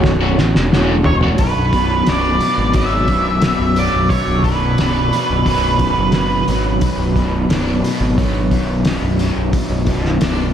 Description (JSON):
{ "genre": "psychedelic rock", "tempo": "88 BPM", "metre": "4/4", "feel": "straight", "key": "B minor", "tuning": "A4 = 440 Hz", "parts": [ { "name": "ensemble organ-string", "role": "sustained chords", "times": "0.0-10.5 s", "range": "B3 to C#5", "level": "-28 LUFS", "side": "right 4 dB", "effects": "none" }, { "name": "crunchy overdriven guitar", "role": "riff", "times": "0.0-10.5 s", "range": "B1 to F#4", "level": "-18 LUFS", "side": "left 1 dB", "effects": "harmonic tremolo" }, { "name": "fuzz fingered electric bass", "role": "bass", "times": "0.0-10.5 s", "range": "B0 to A1", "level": "-19 LUFS", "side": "equal", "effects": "overdrive" }, { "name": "cloth-damped thuddy drum kit", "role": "drums", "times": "0.0-10.4 s", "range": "hi-hat, kick drum, snare drum, toms", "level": "-20 LUFS", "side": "equal", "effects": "none" }, { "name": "octave-fuzz lead guitar", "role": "melody", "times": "1.1-6.4 s", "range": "B4 to E5", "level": "-20 LUFS", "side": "right 2 dB", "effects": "distortion, analog delay" } ], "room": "moderate cathedral reverb, RT60 6.5 s", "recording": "dreamy mix soaked in reverb", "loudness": "-13 LUFS", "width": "side -9 dB against mid", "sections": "0.0-1.4 A section; 1.4-10.5 B section", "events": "drum fill 0.1-1.4", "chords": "0.0 F#m/B; 1.4 Bm" }